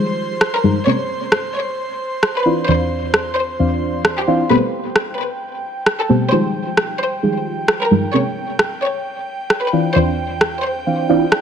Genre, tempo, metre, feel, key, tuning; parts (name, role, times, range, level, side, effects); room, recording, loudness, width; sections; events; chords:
UK garage, two-step garage; 132 BPM; 4/4; swing 61% on 16ths; A4 = 440 Hz
airy breathy pad; sustained chords; 0.0-11.4 s; C5 to C6; -26 LUFS; right 2 dB; chorus
deep mellow chord stab; stabs; 0.0-11.2 s; E3 to F5; -17 LUFS; equal; chorus, phaser, tape echo
electronic rim click; drums; 0.4-11.4 s; -16 LUFS; equal
clear studio violin section; melody; 0.5-10.9 s; G4 to Db5; -22 LUFS; left 1 dB; tape echo
light reverb; -15 LUFS; side -8 dB against mid
0.0-11.4 A section
0.0 Fm9; 0.9 Bbm9; 2.5 Dm9; 4.5 Am9; 6.3 Fm9; 8.1 Bbm9; 9.7 Dm9